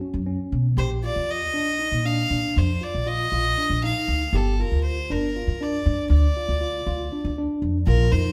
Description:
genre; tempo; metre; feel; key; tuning
progressive instrumental, band music in an uneven meter; 237 BPM (eighths); 7/8; straight; D phrygian; A4 = 440 Hz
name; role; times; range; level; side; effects
tine electric piano; arpeggios; 0.0-8.3 s; C#4 to G4; -32 LUFS; equal; none
upright bass; bass; 0.1-8.3 s; G1 to B2; -25 LUFS; equal; none
clear violin; melody; 0.8-8.3 s; A4 to F5; -28 LUFS; equal; none
room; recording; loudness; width
moderate stone room reverb, RT60 1.3 s; band playing live in one room; -23 LUFS; mono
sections
0.0-7.9 A section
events
none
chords
0.0 F#5; 0.8 Bb5; 4.3 Gm; 6.1 Dm

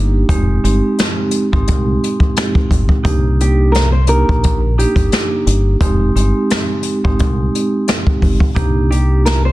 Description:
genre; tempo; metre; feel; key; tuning
hip hop, boom-bap hip-hop; 87 BPM; 4/4; swing 57% on 16ths; unclear; A4 = 440 Hz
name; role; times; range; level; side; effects
nylon-string guitar; melody; 0.0-9.5 s; G4 to C5; -20 LUFS; equal; high-pass filter, low-pass filter, tape echo
vibraphone with medium mallets; accompaniment; 0.0-9.4 s; Ab3 to G4; -18 LUFS; right 2 dB; cassette tape, high-pass filter, low-pass filter
deep dub fingered electric bass; bass; 0.0-9.5 s; F1 to C2; -14 LUFS; equal; none
jazz brush drum kit; drums; 0.3-9.4 s; hi-hat, kick drum, snare drum; -16 LUFS; equal; vintage 12-bit sampler grit
room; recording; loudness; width
small room ambience; dense, heavily limited modern master; -12 LUFS; side -17 dB against mid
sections
0.0-9.5 A section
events
none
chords
0.3 Fm7 (rootless); 3.1 Cm7; 5.8 Fm7 (rootless); 8.6 Cm7

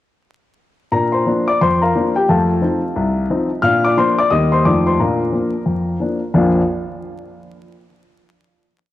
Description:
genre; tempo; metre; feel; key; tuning
jazz, stride piano; 177 BPM; 4/4; swing 62% on 8ths; Bb major; A4 = 440 Hz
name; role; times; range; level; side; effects
warm grand piano; solo; 0.9-6.6 s; Bb1 to F6; -14 LUFS; left 2 dB; none
room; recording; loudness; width
moderate lush hall reverb, RT60 2.3 s; home recording on cassette, vinyl crackle; -14 LUFS; side -14 dB against mid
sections
0.9-6.3 A section; 6.3-7.7 final chord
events
none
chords
0.9 Bb; 2.3 F7; 3.6 Bb; 4.3 Eb; 4.7 F7; 5.0 Bb

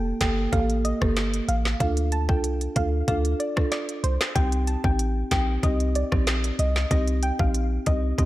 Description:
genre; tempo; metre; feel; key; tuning
dancehall; 94 BPM; 4/4; straight; C dorian; A4 = 440 Hz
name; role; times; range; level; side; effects
warm 808-style bass; bass; 0.0-8.3 s; F1 to D2; -25 LUFS; equal; none
soft round pluck; melody; 0.2-8.3 s; C5 to A5; -31 LUFS; equal; chorus, analog delay
marimba with soft mallets; accompaniment; 0.2-8.3 s; Bb3 to A4; -29 LUFS; right 1 dB; sidechain pumping
island pop drum kit; drums; 0.2-8.3 s; hi-hat, kick drum, rim click, snare drum; -25 LUFS; equal; none
room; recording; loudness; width
light reverb, digital ambience; none; -22 LUFS; side -16 dB against mid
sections
0.0-8.3 A section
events
none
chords
0.0 Gmadd9; 1.8 Dm; 4.4 Cm

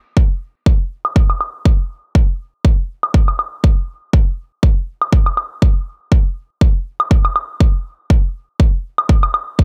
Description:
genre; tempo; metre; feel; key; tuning
house; 121 BPM; 4/4; swing 56% on 16ths; none; none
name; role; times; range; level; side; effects
electronic kick drum; drums; 0.2-9.6 s; none; -14 LUFS; equal; none
woodblock; drums; 1.0-9.5 s; none; -20 LUFS; equal; overdrive, low-pass filter on hats, low-pass filter on snare, low-pass filter on perc, low-pass filter on room
room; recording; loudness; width
little or no reverb; none; -16 LUFS; mono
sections
0.0-9.6 A section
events
none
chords
none

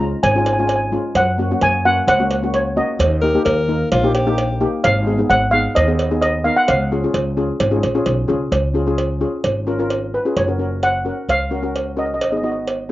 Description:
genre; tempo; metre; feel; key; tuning
calypso; 130 BPM; 4/4; straight; F# major; A4 = 440 Hz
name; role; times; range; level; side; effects
steel pan; melody; 0.0-7.3, 10.1-12.6 s; B4 to A#5; -18 LUFS; equal; slapback echo
steel pan; accompaniment; 0.0-12.9 s; G#3 to A#4; -21 LUFS; left 2 dB; slapback echo
upright bass; bass; 0.0-12.9 s; F#1 to F#2; -21 LUFS; equal; none
cowbell; percussion; 0.2-12.8 s; none; -22 LUFS; right 2 dB; slapback echo
clear alto saxophone; second line; 3.2-4.7 s; E#4 to A#4; -20 LUFS; left 2 dB; slapback echo
room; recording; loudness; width
little or no reverb; recorded outdoors, with no room sound, nothing above 7.5 kHz; -15 LUFS; side -16 dB against mid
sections
0.0-8.5 A section; 8.5-10.4 B section; 10.4-12.9 C section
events
none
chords
0.0 C#; 1.2 F#; 3.0 D#; 4.8 G#madd9; 6.7 C#; 10.4 F#maj7; 12.2 G#m7

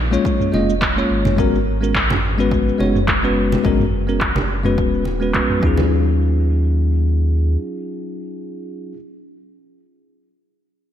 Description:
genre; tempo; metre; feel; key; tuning
sunset chillout; 106 BPM; 4/4; swing 54% on 16ths; Eb minor; A4 = 440 Hz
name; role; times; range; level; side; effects
warm sub bass; bass; 0.0-7.6 s; Eb1 to Eb2; -19 LUFS; equal; tube saturation
bell-like tine electric piano; accompaniment; 0.1-9.0 s; Gb3 to Eb5; -20 LUFS; moving between left 6 dB and right 3 dB; auto-pan, ping-pong delay
deep house drum kit; drums; 0.1-5.6 s; handclaps, shaker, toms; -22 LUFS; right 1 dB; low-pass filter on perc, low-pass filter on snare, low-pass filter on toms, low-pass filter on room, gated reverb
electronic kick drum; drums; 0.3-5.8 s; none; -23 LUFS; equal; none
congas; percussion; 0.5-5.9 s; none; -28 LUFS; right 3 dB; none
room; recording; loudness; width
moderate lush hall reverb, RT60 2.6 s; bright 1980s-style digital production; -15 LUFS; side -10 dB against mid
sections
0.0-5.9 A section; 5.9-8.2 B section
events
none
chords
0.0 Bbm7; 1.4 Abm11; 5.6 Ebm11

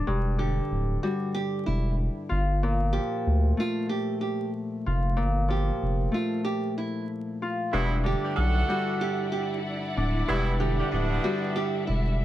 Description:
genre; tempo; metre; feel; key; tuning
hip hop; 94 BPM; 4/4; swing 57% on 16ths; E minor; A4 = 440 Hz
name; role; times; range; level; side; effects
Celtic harp; accompaniment; 0.0-12.2 s; G2 to F4; -30 LUFS; left 2 dB; cassette tape, high-pass filter, low-pass filter
saturated sub bass; bass; 0.1-12.2 s; D1 to D2; -25 LUFS; equal; none
nylon-string guitar; melody; 0.4-12.2 s; E4 to G4; -32 LUFS; right 4 dB; high-pass filter, low-pass filter, analog delay
muted studio string section; sustained chords; 7.7-12.2 s; E4 to F#5; -35 LUFS; equal; high-pass filter, low-pass filter
mellow horn section; stabs; 7.7-11.8 s; D3 to F#5; -31 LUFS; right 2 dB; high-pass filter, low-pass filter, analog delay
room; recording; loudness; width
light reverb; vinyl crackle; -25 LUFS; side -13 dB against mid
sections
0.0-7.7 A section; 7.7-12.2 B section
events
break 6.5-7.7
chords
0.0 Em7; 2.3 Gm9; 7.7 Em9

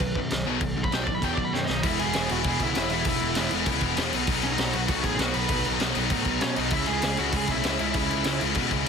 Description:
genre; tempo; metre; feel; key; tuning
punk rock; 196 BPM; 4/4; straight; E major; A4 = 439 Hz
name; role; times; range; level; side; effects
high-gain lead guitar; melody; 0.0-8.4 s; C#4 to B5; -31 LUFS; right 1 dB; distortion, ping-pong delay
distorted electric guitar; riff; 0.0-8.9 s; B2 to E4; -29 LUFS; left 16 dB; overdrive
sludgy distorted guitar; riff; 0.0-8.9 s; E2 to C#4; -31 LUFS; right 15 dB; overdrive
fuzz picked electric bass; bass; 0.0-8.8 s; E1 to B2; -32 LUFS; equal; overdrive
raw garage drum kit; drums; 0.0-8.9 s; crash cymbal, kick drum, snare drum; -28 LUFS; equal; none
room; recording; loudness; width
light reverb; dense, heavily limited modern master; -23 LUFS; side -6 dB against mid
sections
0.0-1.8 A section; 1.8-8.9 B section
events
lead electric guitar solo 0.0-1.8; drum fill 1.5-1.8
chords
0.0 B; 1.8 E; 4.1 B; 6.7 C#m

